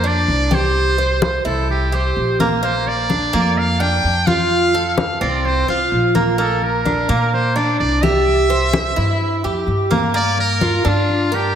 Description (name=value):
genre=latin, Cuban son and guajira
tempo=128 BPM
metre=4/4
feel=straight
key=unclear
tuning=A4 = 440 Hz
part: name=trumpet with metal mute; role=melody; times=0.0-11.6 s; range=F4 to G5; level=-20 LUFS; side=equal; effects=diffuse ambient delay
part: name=Cuban tres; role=arpeggios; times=0.0-11.6 s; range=Bb3 to C5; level=-19 LUFS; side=right 2 dB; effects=none
part: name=upright bass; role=bass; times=0.0-11.5 s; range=Bb1 to Bb2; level=-21 LUFS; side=equal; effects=none
part: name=congas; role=percussion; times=0.0-11.6 s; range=none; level=-24 LUFS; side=left 3 dB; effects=none
room=wet lush hall reverb, RT60 1.8 s, studio reverb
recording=dreamy mix soaked in reverb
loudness=-15 LUFS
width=side -8 dB against mid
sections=0.0-10.1 A section; 10.1-11.6 B section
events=none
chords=0.0 Bb (rootless); 0.7 C; 2.6 Bb; 4.5 F; 6.4 Bb; 8.3 C; 10.1 Gm7